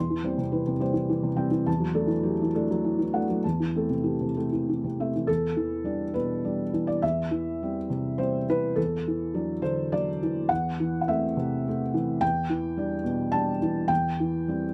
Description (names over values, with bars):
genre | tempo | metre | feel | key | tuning
neoclassical minimalist piano | 104 BPM | 3/4 | rubato | E minor | A4 = 440 Hz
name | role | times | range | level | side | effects
felt-muted upright piano | solo | 0.0-14.7 s | E2 to C6 | -27 LUFS | equal | none
room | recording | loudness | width
little or no reverb | close, detailed microphones | -27 LUFS | mono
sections
0.0-5.3 A section; 5.3-14.7 B section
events
none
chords
0.0 C/E; 1.7 Dadd9/E; 3.4 Am/E; 5.3 Em7; 7.0 C/E; 8.8 Dadd9/E; 10.5 Am/E; 12.2 Em7; 13.9 C/E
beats
0.53 1.10 | 1.67 2.24 2.83 | 3.43 4.04 4.66 | 5.27 5.86 6.44 | 7.03 7.61 8.19 | 8.77 9.34 9.93 | 10.50 11.08 11.65 | 12.21 12.77 13.33 | 13.90 14.47